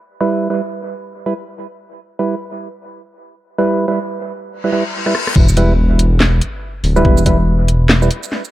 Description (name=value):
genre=deep dubstep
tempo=142 BPM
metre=4/4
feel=swing 60% on 16ths, half-time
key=E minor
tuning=A4 = 441 Hz
part: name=percussive organ stab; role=stabs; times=0.2-8.1 s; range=G3 to B4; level=-18 LUFS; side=right 2 dB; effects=chorus, dub echo
part: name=reverse cymbal and sub drop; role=sound effects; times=4.6-7.0 s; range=none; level=-22 LUFS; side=left 2 dB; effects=none
part: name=garage drum kit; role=drums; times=5.1-8.5 s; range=crash cymbal, handclaps, hi-hat, rim click, shaker, snare drum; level=-18 LUFS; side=equal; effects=none
part: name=dark detuned saw bass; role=bass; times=5.4-8.1 s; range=D1 to E1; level=-13 LUFS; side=equal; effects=none
part: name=electronic kick drum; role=drums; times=5.4-7.4 s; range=none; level=-12 LUFS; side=equal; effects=overdrive
room=light reverb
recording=none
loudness=-13 LUFS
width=side -15 dB against mid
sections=0.0-5.4 A section; 5.4-8.5 B section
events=filter sweep on synth stab 0.0-5.4; reverse cymbal 4.6-5.4; drum fill 5.0-5.4; drop 5.4-8.5; impact 5.4-7.0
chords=0.0 Em